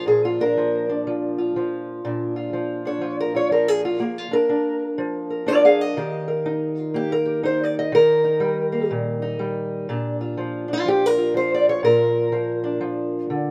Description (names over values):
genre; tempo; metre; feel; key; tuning
acoustic country blues, solo or duo; 122 BPM; 4/4; swing 64% on 8ths; Bb major; A4 = 440 Hz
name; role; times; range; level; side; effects
fingerpicked steel-string acoustic guitar; solo; 0.0-13.5 s; Bb2 to F5; -22 LUFS; equal; none
room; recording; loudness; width
light reverb; rough home demo mix; -22 LUFS; mono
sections
0.0-13.5 A section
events
steel-string acoustic guitar solo 0.0-13.5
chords
0.0 Bb; 6.0 Eb; 9.9 Bb